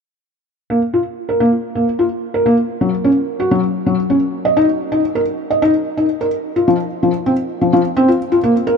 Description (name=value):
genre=IDM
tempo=128 BPM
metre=4/4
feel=straight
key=Bb minor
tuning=A4 = 440 Hz
part: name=felt-muted upright piano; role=arpeggios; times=0.7-8.8 s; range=F3 to Eb5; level=-14 LUFS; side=left 1 dB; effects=low-pass filter, ping-pong delay
room=moderate huge ambient reverb, RT60 8.9 s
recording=none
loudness=-14 LUFS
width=side -6 dB against mid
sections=0.7-8.8 A section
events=none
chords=none